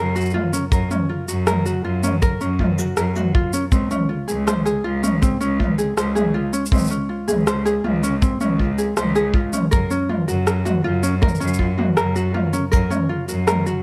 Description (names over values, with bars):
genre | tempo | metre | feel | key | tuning
folktronica | 80 BPM | 4/4 | straight | unclear | A4 = 438 Hz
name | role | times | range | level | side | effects
ukulele | arpeggios | 0.0-13.8 s | C4 to C5 | -26 LUFS | equal | digital delay
bright cello | bass | 0.0-13.8 s | Db2 to Gb2 | -25 LUFS | equal | none
minimal click drum kit | drums | 0.2-13.8 s | rim click, shaker, toms | -26 LUFS | equal | overdrive
kick drum | drums | 0.7-12.9 s | none | -21 LUFS | equal | none
room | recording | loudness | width
small room ambience | none | -20 LUFS | mono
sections
0.0-13.8 A section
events
none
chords
0.0 Gbmaj7; 3.7 Dbmaj7; 9.7 Gbmaj7